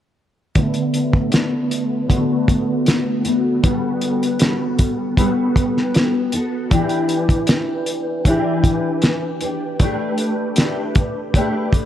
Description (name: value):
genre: indie pop, bedroom pop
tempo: 78 BPM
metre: 4/4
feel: straight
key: D major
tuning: A4 = 441 Hz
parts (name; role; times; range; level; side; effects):
- fingerpicked steel-string acoustic guitar; accompaniment; 0.6-11.9 s; D3 to B4; -19 LUFS; left 1 dB; ensemble chorus, vibrato effect, low-pass filter
- cloth-damped thuddy drum kit; drums; 0.6-11.9 s; hi-hat, kick drum, snare drum; -18 LUFS; equal; none
room: little or no reverb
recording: lossy compression artefacts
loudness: -16 LUFS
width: side -11 dB against mid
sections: 0.6-11.9 A section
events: filter sweep on steel-string acoustic guitar 0.6-11.9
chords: 0.6 D6; 3.6 Gmaj9; 6.7 Em7; 9.8 A9sus4